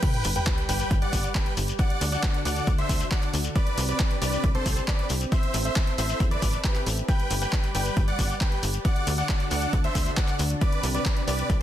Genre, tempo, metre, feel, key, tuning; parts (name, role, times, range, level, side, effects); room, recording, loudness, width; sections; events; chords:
uplifting trance; 136 BPM; 4/4; straight; G major; A4 = 439 Hz
big supersaw lead; melody; 0.0-11.5 s; G4 to G5; -31 LUFS; equal; sidechain pumping, dub echo
clear baby grand piano; second line; 0.0-11.5 s; B4 to G5; -38 LUFS; equal; sidechain pumping, dub echo
lush unison pad; sustained chords; 0.0-11.6 s; C3 to D5; -34 LUFS; equal; chorus, sidechain pumping
electronic kick drum; drums; 0.0-11.6 s; -24 LUFS; equal; overdrive, studio reverb
punchy analog drum machine; drums; 0.0-11.6 s; crash cymbal, handclaps, hi-hat; -32 LUFS; right 1 dB; overdrive, studio reverb
shekere; percussion; 0.0-11.6 s; -37 LUFS; left 7 dB
noise sweep and sub drop; sound effects; 0.0-1.8 s; -33 LUFS; equal
tight sequencer bass; bass; 0.2-11.6 s; G1 to E2; -28 LUFS; equal; sidechain pumping, high-pass filter
little or no reverb; dense, heavily limited modern master; -23 LUFS; side -12 dB against mid
0.0-11.6 A section
drop 0.0-11.6; impact 0.0-1.8
0.0 G; 1.8 D; 3.6 Csus2; 5.3 Am; 7.1 G; 8.8 D; 10.6 Csus2